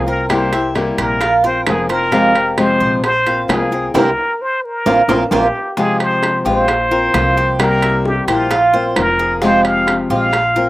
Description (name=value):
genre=latin, Cuban son and guajira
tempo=132 BPM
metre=4/4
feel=straight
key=F harmonic minor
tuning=A4 = 440 Hz
part: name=trumpet with plunger mute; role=melody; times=0.0-10.7 s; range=F4 to F5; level=-17 LUFS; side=equal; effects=none
part: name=flamenco guitar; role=accompaniment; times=0.0-10.7 s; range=C3 to G4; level=-17 LUFS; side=left 2 dB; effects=none
part: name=Cuban tres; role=arpeggios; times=0.0-10.7 s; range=F4 to F5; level=-19 LUFS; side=right 4 dB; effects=slapback echo
part: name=upright bass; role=bass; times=0.0-10.7 s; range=F1 to C2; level=-24 LUFS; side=right 1 dB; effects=none
part: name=bongos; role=percussion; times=0.3-10.6 s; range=none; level=-24 LUFS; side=left 2 dB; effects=none
part: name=timbales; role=percussion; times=0.3-10.6 s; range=none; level=-23 LUFS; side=right 4 dB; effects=none
room=little or no reverb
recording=recorded outdoors, with no room sound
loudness=-12 LUFS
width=side -17 dB against mid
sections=0.0-5.8 A section; 5.8-10.7 B section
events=band accent 3.9-5.8; drum fill 4.9-5.8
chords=0.3 C7; 1.2 Bbsus2; 2.1 Fmadd9; 3.0 Bbsus2; 3.9 C7; 4.9 Bbsus2; 5.8 Fmadd9; 6.7 Bbsus2; 7.6 C7; 8.5 Bbsus2; 9.4 Fmadd9